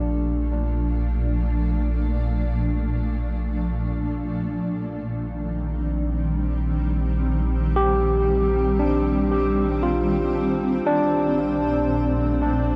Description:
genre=ambient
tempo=58 BPM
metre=3/4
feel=straight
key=Bb major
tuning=A4 = 440 Hz
part: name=granular cloud pad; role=sustained chords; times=0.0-12.8 s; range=Bb2 to D4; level=-28 LUFS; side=equal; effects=built-in reverb
part: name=barky tine electric piano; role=arpeggios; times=0.0-1.1, 7.8-12.8 s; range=D4 to G4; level=-26 LUFS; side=equal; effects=tape echo
part: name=warm sub bass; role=bass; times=0.0-12.8 s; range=Bb1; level=-27 LUFS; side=equal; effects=none
room=moderate huge ambient reverb, RT60 9.4 s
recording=dark, warm production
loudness=-23 LUFS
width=mono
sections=0.0-12.8 A section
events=fade-in on ambient pad 0.0-12.8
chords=0.0 Bbmaj7; 4.7 Eb6/Bb; 10.9 Bbmaj9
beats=0.51 | 1.55 2.58 3.62 | 4.65 5.68 6.72 | 7.75 8.79 9.82 | 10.86 11.89

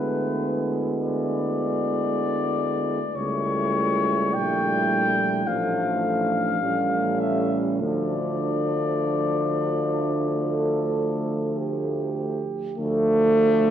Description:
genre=classical, hymn-like piece for brass band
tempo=47-56 BPM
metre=4/4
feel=rubato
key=D minor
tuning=A4 = 445 Hz
part: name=dark cornet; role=melody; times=0.0-13.7 s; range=B4 to G5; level=-27 LUFS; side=left 4 dB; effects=none
part: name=mellow French horn section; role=second line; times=0.0-13.7 s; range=C#4 to A4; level=-30 LUFS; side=right 5 dB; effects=none
part: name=clear euphonium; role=accompaniment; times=0.0-13.7 s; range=A3 to B3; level=-27 LUFS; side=equal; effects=none
part: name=clear trombone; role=accompaniment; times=0.0-13.7 s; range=F3 to G#3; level=-30 LUFS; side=right 2 dB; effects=none
part: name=clear tuba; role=bass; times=0.0-13.7 s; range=A1 to D2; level=-28 LUFS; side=equal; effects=none
room=wet church reverb, RT60 2.6 s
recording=worn, warbling old tape, cassette tape, warbly pitch drift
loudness=-22 LUFS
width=side -10 dB against mid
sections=0.0-12.8 A section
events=none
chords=0.0 E7/D; 3.2 A7/C#; 5.5 Dm/A; 6.6 A7; 7.8 Dm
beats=1.02 2.09 | 3.17 4.35 5.46 6.61 | 7.81 9.05 10.30 11.56 | 12.78

